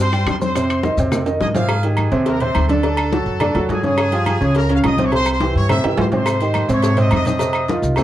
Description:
latin, salsa; 210 BPM; 4/4; straight; A4 = 440 Hz
bright trumpet section; melody; 0.0-7.8 s; Ab4 to E6; -24 LUFS; left 1 dB
warm upright piano; accompaniment; 0.0-8.0 s; C3 to C6; -19 LUFS; right 1 dB
upright bass; bass; 0.0-8.0 s; C2 to Ab2; -20 LUFS; equal
congas; percussion; 0.0-8.0 s; -26 LUFS; left 3 dB
maracas; percussion; 0.1-1.7, 6.3-8.0 s; -37 LUFS; left 5 dB
timbales and agogo bells; percussion; 0.1-8.0 s; -25 LUFS; right 4 dB
bongos and cowbell; percussion; 0.3-8.0 s; -28 LUFS; left 4 dB
claves; percussion; 0.3-8.0 s; -31 LUFS; left 3 dB
moderate small room ambience, RT60 0.5 s; worn, warbling old tape, cassette tape, warbly pitch drift; -15 LUFS; side -13 dB against mid
0.0-1.7 A section; 1.7-8.0 B section
drum fill 1.1-1.7, 5.8-6.3
0.0 C5; 0.6 Fm7; 1.7 Abmaj7; 2.8 D; 4.0 Gm7b5; 5.1 C; 6.3 Abmaj7; 7.4 F7(no3)
0.27 | 0.55 0.84 1.12 1.41 | 1.70 1.98 2.27 2.55 | 2.84 3.12 3.41 3.69 | 3.98 4.27 4.55 4.84 | 5.12 5.41 5.69 5.98 | 6.27 6.55 6.84 7.12 | 7.41 7.69 7.98

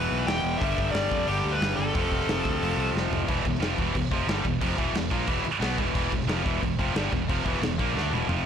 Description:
heavy metal; 180 BPM; 4/4; straight; E phrygian; A4 = 440 Hz
high-gain lead guitar; melody; 0.0-2.9 s; G4 to G5; -29 LUFS; left 2 dB; distortion
high-gain distorted guitar; riff; 0.0-8.5 s; E2 to D4; -29 LUFS; right 9 dB; distortion
tight distorted guitar; riff; 0.0-8.5 s; E2 to D4; -31 LUFS; left 15 dB; distortion
fingered electric bass; bass; 0.0-8.5 s; E1 to F2; -31 LUFS; equal
big rock drum kit; drums; 0.3-8.4 s; crash cymbal, hi-hat, kick drum, snare drum, toms; -30 LUFS; equal
light reverb; blown-out, overdriven recording, overdrive; -24 LUFS; side -8 dB against mid
0.0-3.3 A section; 3.3-8.5 B section
drum fill 2.9-3.3, 8.0-8.5
0.0 Em; 0.6 G5; 1.9 F; 3.3 Em
0.28 | 0.61 0.94 1.28 1.61 | 1.95 2.28 2.61 2.95 | 3.28 3.62 3.95 4.28 | 4.62 4.95 5.29 5.62 | 5.95 6.29 6.62 6.95 | 7.29 7.62 7.95 8.29

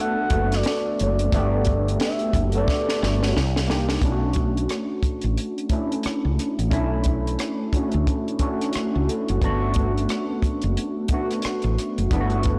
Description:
R&B, neo-soul; 89 BPM; 4/4; swing 58% on 16ths; B minor; A4 = 440 Hz
expressive synth lead; melody; 0.0-3.7 s; D5 to F#5; -30 LUFS; equal; chorus, analog delay
overdriven tine electric piano; accompaniment; 0.0-12.6 s; A3 to A4; -27 LUFS; equal; phaser
woody fretless electric bass; bass; 0.3-12.6 s; F#1 to D2; -26 LUFS; equal; tube saturation, subtle chorus
compact cocktail drum kit; drums; 0.3-12.6 s; hi-hat, kick drum, rim click, snare drum; -28 LUFS; equal; soft clipping on snare
small room ambience; blown-out, overdriven recording, overdrive; -23 LUFS; mono
0.0-4.0 A section; 4.0-12.6 B section
drum fill 2.7-4.0
0.0 Gmaj9; 3.3 Cm9; 4.0 Bm9; 9.4 Gmaj9
0.65 | 1.33 2.00 2.67 3.35 | 4.02 4.70 5.37 6.05 | 6.72 7.39 8.07 8.74 | 9.42 10.09 10.77 11.44 | 12.11

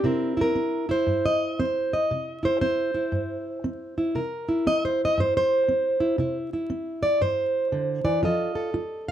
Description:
acoustic country blues, solo or duo; 117 BPM; 4/4; swing 64% on 8ths; C mixolydian; A4 = 440 Hz
fingerpicked plugged-in steel-string acoustic guitar; solo; 0.0-9.1 s; G2 to F5; -22 LUFS; right 1 dB
light reverb; vinyl crackle; -22 LUFS; side -10 dB against mid
0.0-9.1 A section
steel-string acoustic guitar solo 0.0-9.1
0.0 C7; 8.2 F7
| 0.05 0.56 1.07 1.58 | 2.10 2.61 3.12 3.63 | 4.14 4.65 5.17 5.68 | 6.19 6.70 7.21 7.72 | 8.23 8.74

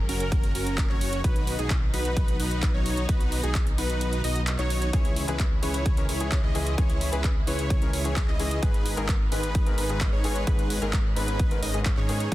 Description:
EDM, festival progressive house; 130 BPM; 4/4; straight; G# minor; A4 = 439 Hz
dark studio string section; sustained chords; 0.0-12.3 s; C#3 to B4; -36 LUFS; equal; sidechain pumping
wide detuned saw bass; bass; 0.0-12.3 s; F#1 to G#2; -30 LUFS; equal; chorus, sidechain pumping
wide unison lead; arpeggios; 0.1-12.3 s; G#4 to D#5; -34 LUFS; equal; vintage 12-bit sampler grit, sidechain pumping, digital delay
dense compressed supersaw; riff; 0.1-12.3 s; C#4 to D#5; -33 LUFS; right 1 dB; sidechain pumping, digital delay
big-room dance drum kit; drums; 0.1-12.3 s; handclaps, hi-hat; -34 LUFS; right 1 dB; overdrive
electronic kick drum; drums; 0.3-12.3 s; -24 LUFS; equal; overdrive
warm concert grand piano; accompaniment; 4.9-12.3 s; G#2 to B4; -34 LUFS; left 4 dB; sidechain pumping, digital delay
little or no reverb; dense, heavily limited modern master; -23 LUFS; side -16 dB against mid
0.0-12.3 A section
kick drops out 4.0-4.9
0.0 F#; 1.2 B; 4.9 C#m; 8.6 G#m
0.32 0.78 | 1.24 1.70 2.17 2.63 | 3.09 3.55 4.01 4.47 | 4.93 5.40 5.86 6.32 | 6.78 7.24 7.70 8.16 | 8.63 9.09 9.55 10.01 | 10.47 10.93 11.40 11.86 | 12.32

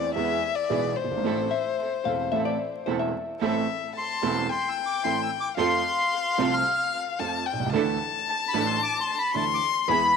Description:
tango; 111 BPM; 4/4; rubato; A minor; A4 = 441 Hz
warm violin; second line; 0.0-10.2 s; C5 to C6; -27 LUFS; left 9 dB
warm grand piano; accompaniment; 0.0-10.1 s; E1 to A4; -29 LUFS; right 7 dB
rich studio string section; stabs; 0.0-10.1 s; E3 to A4; -34 LUFS; right 8 dB; tape echo
hollow-body jazz guitar; second line; 1.5-3.4 s; C5 to F5; -30 LUFS; left 7 dB
bandoneon; melody; 4.0-10.2 s; A5 to F6; -26 LUFS; equal
moderate plate reverb, RT60 2.6 s; 1960s-style stereo with parts hard left and right, vinyl crackle; -23 LUFS; side -6 dB against mid
0.0-3.4 A section; 3.4-10.2 B section
violin solo 0.0-3.4
0.2 E; 1.2 Am; 5.6 F; 7.7 Dsus2
0.16 0.70 | 1.24 1.78 2.32 2.87 | 3.41 3.96 4.50 5.04 | 5.58 6.12 6.66 7.19 | 7.73 8.27 8.81 9.34 | 9.88

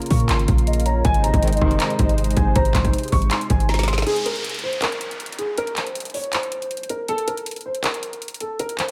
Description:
hip hop, trap; 159 BPM; 4/4; half-time; A4 = 439 Hz
warm analog pad; sustained chords; 0.0-4.0 s; C3 to C5; -29 LUFS; equal; chorus
trap drum kit; drums; 0.0-8.9 s; handclaps, hi-hat, kick drum, snare drum; -25 LUFS; equal
dark concert grand piano; melody; 0.1-8.9 s; Ab4 to Db6; -29 LUFS; equal; analog chorus, low-pass filter, delay
warm 808-style bass; bass; 0.1-4.0 s; Gb1 to Bb2; -22 LUFS; equal
hollow clarinet-like synth lead; second line; 0.7-2.9 s; C5 to Eb5; -30 LUFS; equal; chorus, delay
mellow brass ensemble; stabs; 1.4-2.0 s; Ab2 to Eb3; -30 LUFS; equal
downlifter; sound effects; 4.1-7.1 s; -34 LUFS; equal
moderate plate reverb, RT60 1.3 s, digital ambience; dreamy mix soaked in reverb; -21 LUFS; mono
0.0-4.1 A section; 4.1-8.9 B section
drum fill 3.7-4.1; break 4.1-8.9
0.0 Bbm; 1.0 Ab; 4.1 N.C.
0.29 0.67 | 1.05 1.43 1.80 2.18 | 2.56 2.94 3.31 3.69 | 4.07 4.44 4.82 5.20 | 5.58 5.95 6.33 6.71 | 7.09 7.46 7.84 8.22 | 8.60

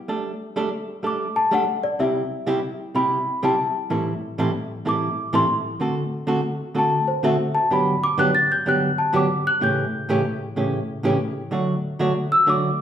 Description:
country; 126 BPM; 4/4; swing 66% on 8ths; G major; A4 = 440 Hz
hollow-body jazz guitar; accompaniment; 0.1-12.7 s; G2 to A4; -22 LUFS; right 1 dB
celesta; melody; 1.1-12.8 s; C5 to A6; -21 LUFS; left 1 dB
wet large studio reverb, RT60 1.3 s; band playing live in one room; -20 LUFS; side -9 dB against mid
0.1-12.8 A section
celesta solo 0.1-12.8
0.1 Gsus2; 2.0 C; 3.9 Am7; 5.8 D7; 7.7 Gmaj7; 9.6 A7; 11.5 D
| 0.09 0.57 1.04 1.52 | 1.99 2.47 2.94 3.42 | 3.90 4.37 4.85 5.33 | 5.80 6.28 6.76 7.23 | 7.71 8.19 8.66 9.14 | 9.61 10.09 10.56 11.04 | 11.52 11.99 12.47

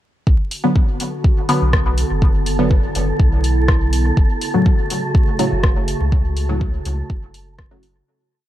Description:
dub techno; 123 BPM; 4/4; straight; B minor; A4 = 439 Hz
warbly tape-like pad; sustained chords; 0.9-8.0 s; C#3 to F#4; -26 LUFS; right 2 dB; chorus, built-in reverb, sidechain pumping
soft dub sub bass; bass; 0.3-8.0 s; F#1 to C#2; -19 LUFS; equal; sidechain pumping
electronic kick drum; drums; 0.3-7.7 s; -15 LUFS; equal
wind-like tuned noise texture; texture; 1.1-8.1 s; A4; -28 LUFS; right 1 dB; built-in reverb, sidechain pumping
deep house drum kit; drums; 0.5-7.9 s; hi-hat, rim click; -25 LUFS; left 1 dB; dub echo
filtered dub chord stab; stabs; 0.6-7.8 s; A2 to B3; -21 LUFS; left 1 dB; chorus, phaser, sidechain pumping, dub echo
light reverb, digital ambience; dark, warm production, vinyl crackle; -15 LUFS; side -13 dB against mid
0.3-8.1 groove
fade-out 5.5-8.1
0.3 Bm; 4.2 F#m
| 0.27 0.76 1.24 1.73 | 2.22 2.71 3.20 3.68 | 4.17 4.66 5.15 5.63 | 6.12 6.61 7.10 7.59

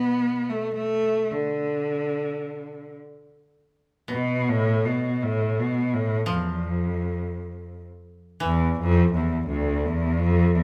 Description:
japanese traditional, Japanese chamber music; 53-58 BPM; 2/4; rubato; A4 = 441 Hz
rich cello; melody; 0.0-10.6 s; D2 to B3; -25 LUFS; equal
koto; accompaniment; 0.0-10.6 s; B2 to F3; -36 LUFS; equal
moderate recital hall reverb, RT60 1.5 s; -25 LUFS; mono
0.0-4.1 A section; 4.1-10.6 B section
0.79 | 1.86 2.96 | 4.09 5.21 | 6.29 7.35 | 8.41 9.46 | 10.51

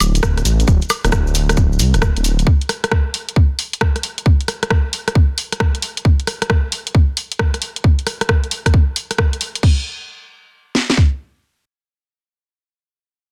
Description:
UK garage, two-step garage; 134 BPM; 4/4; swing 65% on 16ths; A4 = 440 Hz
dark detuned saw bass; bass; 0.0-2.4 s; D1 to C2; -18 LUFS; equal; tube saturation
garage drum kit; drums; 0.0-9.7 s; crash cymbal, hi-hat, rim click, woodblock; -22 LUFS; equal; studio reverb, soft clipping on snare
maracas; percussion; 0.0-2.5 s; -29 LUFS; equal
garage drum kit; drums; 0.2-11.1 s; kick drum, snare drum; -16 LUFS; equal; studio reverb
little or no reverb; dense, heavily limited modern master; -17 LUFS; mono
0.0-9.6 A section; 9.6-13.2 B section
0.23 | 0.68 1.12 1.57 2.02 | 2.47 2.91 3.36 3.81 | 4.26 4.71 5.15 5.60 | 6.05 6.50 6.94 7.39 | 7.84 8.29 8.73 9.18 | 9.63 10.08 10.53 10.97

